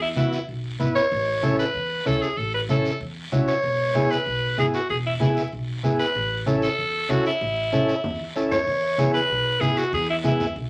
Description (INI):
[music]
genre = latin, cumbia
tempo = 191 BPM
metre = 4/4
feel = straight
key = E major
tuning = A4 = 438 Hz
[part]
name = raspy alto saxophone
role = melody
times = 0.0-10.5 s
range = E4 to C#5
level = -26 LUFS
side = equal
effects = none
[part]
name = upright bass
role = bass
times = 0.0-10.7 s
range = E1 to G#2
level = -34 LUFS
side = equal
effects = none
[part]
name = combo organ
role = accompaniment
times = 0.2-10.5 s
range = B3 to B4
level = -27 LUFS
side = equal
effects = none
[part]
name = congas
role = percussion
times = 0.2-10.7 s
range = none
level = -29 LUFS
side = equal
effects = none
[part]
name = guiro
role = percussion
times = 0.2-10.7 s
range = none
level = -41 LUFS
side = equal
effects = none
[sound]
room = wet studio reverb, RT60 0.5 s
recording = vinyl crackle, lossy compression artefacts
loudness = -23 LUFS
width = mono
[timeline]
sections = 0.0-8.7 A section; 8.7-10.7 A section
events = drum fill 7.7-8.7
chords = 0.0 E5; 1.1 A; 3.6 E; 6.2 A; 8.7 E